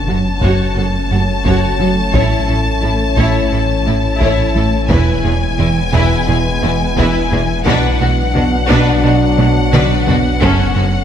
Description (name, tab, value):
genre	cinematic, hybrid orchestral and electronic film score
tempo	87 BPM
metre	4/4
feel	straight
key	F# minor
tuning	A4 = 441 Hz
part	rich symphonic violin section	melody	0.0-11.0 s	F#5 to A5	-21 LUFS	left 4 dB	none
part	dark French horn section	sustained chords	0.0-11.0 s	F#3 to D4	-22 LUFS	left 4 dB	none
part	ethereal airy pad	sustained chords	0.0-11.0 s	E3 to C#5	-23 LUFS	left 1 dB	ensemble chorus, built-in reverb
part	punchy sub bass	bass	0.0-11.0 s	E1 to B1	-20 LUFS	equal	none
part	impact	sound effects	0.0-2.1 s	none	barely audible	none	none
part	rich symphonic violin section	second line	0.1-10.8 s	D4 to C#5	-24 LUFS	left 3 dB	none
part	rich symphonic viola section	accompaniment	0.1-10.8 s	C#4 to F#4	-22 LUFS	equal	none
part	smooth gliding synth bass	riff	0.1-11.0 s	E2 to B3	-19 LUFS	right 3 dB	none
part	bright symphonic cello section	bass	0.1-10.8 s	E2 to B2	-21 LUFS	right 2 dB	none
part	clear symphonic double bass section	bass	0.1-10.8 s	E1 to B1	-21 LUFS	right 3 dB	none
part	taiko ensemble	drums	0.4-11.0 s	none	-21 LUFS	equal	none
room	moderate scoring stage reverb, RT60 2.1 s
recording	none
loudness	-11 LUFS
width	side -9 dB against mid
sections	0.0-11.0 A section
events	impact 0.0-2.1; drum fill 9.4-10.4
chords	0.0 F#m; 2.1 A; 4.9 E; 7.7 Bm; 10.4 F#m